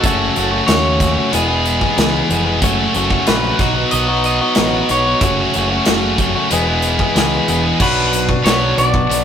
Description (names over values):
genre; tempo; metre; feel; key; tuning
quiet-loud alternative rock; 93 BPM; 4/4; straight; F# dorian; A4 = 440 Hz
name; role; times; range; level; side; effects
electric guitar at the edge of break-up; melody; 0.0-9.2 s; A4 to D#5; -20 LUFS; equal; none
clean electric guitar; arpeggios; 0.0-9.2 s; E2 to G#4; -19 LUFS; left 2 dB; none
heavy high-gain guitar; riff; 0.0-9.2 s; F#2 to A4; -18 LUFS; right 1 dB; distortion
growling picked electric bass; bass; 0.0-9.2 s; E1 to D#2; -21 LUFS; right 1 dB; overdrive
big rock drum kit; drums; 0.0-9.2 s; crash cymbal, hi-hat, kick drum, snare drum; -19 LUFS; equal; none
room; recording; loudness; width
moderate studio reverb, RT60 0.6 s; rough rehearsal-room recording, warm saturation; -13 LUFS; side -8 dB against mid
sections
0.0-7.8 A section; 7.8-9.2 B section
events
none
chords
0.0 F#m; 1.3 E; 2.6 F#m; 3.6 B; 5.2 F#m; 6.5 E; 7.8 Bm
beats
| 0.04 0.69 1.33 1.98 | 2.62 3.27 3.92 4.56 | 5.21 5.86 6.50 7.15 | 7.80 8.45 9.10